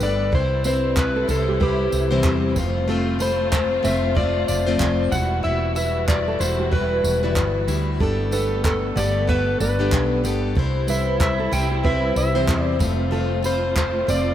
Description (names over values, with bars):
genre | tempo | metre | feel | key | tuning
acoustic pop | 94 BPM | 4/4 | swing 60% on 16ths | unclear | A4 = 442 Hz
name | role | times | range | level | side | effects
electric slide guitar | melody | 0.0-14.3 s | G4 to G5 | -25 LUFS | equal | none
picked plugged-in steel-string acoustic guitar | accompaniment | 0.0-14.3 s | C3 to C5 | -24 LUFS | left 4 dB | none
warm studio string section | sustained chords | 0.0-14.3 s | E3 to G4 | -32 LUFS | equal | none
woody fretless electric bass | bass | 0.0-14.3 s | E1 to E2 | -24 LUFS | right 1 dB | none
compact cocktail drum kit | drums | 0.0-14.3 s | handclaps, kick drum, tambourine | -25 LUFS | right 1 dB | none
nylon-string guitar | arpeggios | 0.7-14.3 s | G4 to B5 | -30 LUFS | right 4 dB | none
room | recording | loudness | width
moderate cathedral reverb, RT60 5.2 s | in a vast, echoing space | -18 LUFS | side -11 dB against mid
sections
0.0-14.3 A section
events
none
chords
0.3 C; 2.6 F; 5.1 Emadd9; 8.0 Gadd9; 10.6 C; 12.8 F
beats
| 0.33 0.97 1.61 2.25 | 2.89 3.53 4.17 4.81 | 5.45 6.09 6.73 7.37 | 8.01 8.64 9.28 9.92 | 10.56 11.20 11.85 12.48 | 13.13 13.77